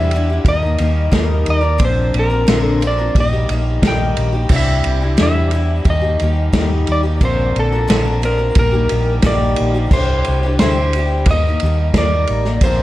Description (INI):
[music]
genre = folk rock and heartland rock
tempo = 89 BPM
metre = 4/4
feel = straight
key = unclear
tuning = A4 = 440 Hz
[part]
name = electric slide guitar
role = melody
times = 0.0-12.8 s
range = A4 to G5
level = -20 LUFS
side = equal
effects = analog delay
[part]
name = picked twelve-string acoustic guitar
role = accompaniment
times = 0.0-12.8 s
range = Bb2 to Bb4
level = -21 LUFS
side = left 4 dB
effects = none
[part]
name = hollow-body short-scale fingered electric bass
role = bass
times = 0.0-12.8 s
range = A1 to E2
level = -17 LUFS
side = equal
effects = none
[part]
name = unplugged drum kit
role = drums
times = 0.1-12.8 s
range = crash cymbal, kick drum, ride cymbal, snare drum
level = -18 LUFS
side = equal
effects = vintage 12-bit sampler grit
[sound]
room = light reverb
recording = dark, warm production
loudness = -13 LUFS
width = side -15 dB against mid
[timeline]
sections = 0.0-12.8 A section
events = none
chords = 0.5 Eb; 1.8 Bbadd9; 3.2 Eb/Bb; 4.5 Cadd9; 5.9 Eb; 7.2 Bbadd9; 8.6 Eb/Bb; 9.9 Cadd9; 11.3 Eb